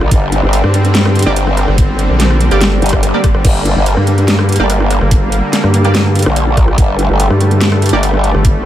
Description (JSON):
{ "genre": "heavy wobble dubstep", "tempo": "144 BPM", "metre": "4/4", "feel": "half-time", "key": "G minor", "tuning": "A4 = 438 Hz", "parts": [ { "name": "supersaw pad", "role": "sustained chords", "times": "0.0-8.7 s", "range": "D3 to C4", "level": "-17 LUFS", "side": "equal", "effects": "vintage 12-bit sampler grit, sidechain pumping" }, { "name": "growl bass", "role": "bass", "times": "0.0-8.3 s", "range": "G1 to Bb1", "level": "-12 LUFS", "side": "equal", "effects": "chorus, overdrive" }, { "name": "dubstep drum kit", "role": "drums", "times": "0.0-8.5 s", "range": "crash cymbal, hi-hat, rim click, snare drum", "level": "-18 LUFS", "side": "equal", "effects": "studio reverb" }, { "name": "electronic kick drum", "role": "drums", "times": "0.1-8.5 s", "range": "none", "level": "-12 LUFS", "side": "equal", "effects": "studio reverb" }, { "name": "vowel-sweep wobble bass", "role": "bass", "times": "0.6-8.7 s", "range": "G1 to G2", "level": "-12 LUFS", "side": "equal", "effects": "chorus, overdrive" }, { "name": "orchestra-hit-like synth stab", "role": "stabs", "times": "1.3-8.0 s", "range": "Bb3 to D5", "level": "-20 LUFS", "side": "right 3 dB", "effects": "built-in reverb, tape echo" }, { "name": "swell", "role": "sound effects", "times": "2.8-3.4 s", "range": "none", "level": "-24 LUFS", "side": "left 5 dB", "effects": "none" } ], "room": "little or no reverb", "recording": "none", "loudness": "-9 LUFS", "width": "side -12 dB against mid", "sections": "0.0-8.7 A section", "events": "swell 2.8-3.4", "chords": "0.0 Gm" }